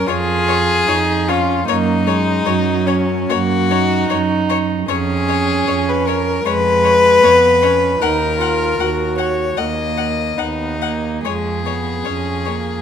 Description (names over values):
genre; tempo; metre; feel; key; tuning
classical, slow romantic movement for string quartet; 76 BPM; 4/4; rubato; unclear; A4 = 440 Hz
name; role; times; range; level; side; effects
warm violin; second line; 0.0-12.8 s; C#4 to D#5; -16 LUFS; left 3 dB; none
dark viola; accompaniment; 0.0-12.8 s; F#3 to F#4; -21 LUFS; right 4 dB; none
rich violin; melody; 0.1-12.5 s; C#5 to F#5; -25 LUFS; left 12 dB; none
warm cello; bass; 0.1-12.8 s; D#2 to F#2; -21 LUFS; right 4 dB; none
room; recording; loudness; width
light reverb; none; -14 LUFS; side -8 dB against mid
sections
0.0-12.8 A section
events
none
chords
0.1 C#/E#; 1.7 F#5; 4.9 C#/E#; 8.0 D#m; 11.2 C#/E#